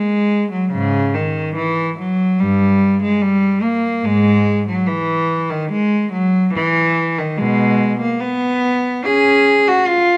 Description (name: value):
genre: classical, baroque-style suite movement for unaccompanied cello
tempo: 72 BPM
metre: 4/4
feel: rubato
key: unclear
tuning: A4 = 439 Hz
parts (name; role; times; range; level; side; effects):
- rich cello; solo; 0.0-10.2 s; G2 to G#4; -16 LUFS; equal; none
room: moderate recital hall reverb, RT60 1.5 s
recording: close, detailed microphones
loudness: -17 LUFS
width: mono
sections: 0.0-10.2 A section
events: none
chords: none